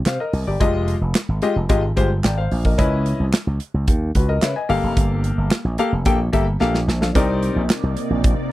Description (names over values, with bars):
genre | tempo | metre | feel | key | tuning
early-eighties boogie funk | 110 BPM | 4/4 | straight | unclear | A4 = 440 Hz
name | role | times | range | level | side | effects
clear concert grand piano | accompaniment | 0.1-7.6 s | Ab3 to Ab5 | -22 LUFS | left 3 dB | none
slap bass with an envelope filter | bass | 0.1-8.3 s | F1 to Db3 | -20 LUFS | equal | none
modern studio drum kit | drums | 0.1-8.4 s | handclaps, hi-hat, kick drum, snare drum | -20 LUFS | right 1 dB | none
lush unison pad | sustained chords | 7.5-8.5 s | C3 to D5 | -26 LUFS | right 1 dB | chorus, phaser
room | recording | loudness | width
little or no reverb | dry, close 1970s-style studio recording | -17 LUFS | side -16 dB against mid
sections
0.0-7.2 A section; 7.2-8.5 B section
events
drum fill 6.6-7.2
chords
0.0 Cm9; 0.6 Fm9; 2.8 Dbm9; 4.7 Gm9; 7.2 Cm9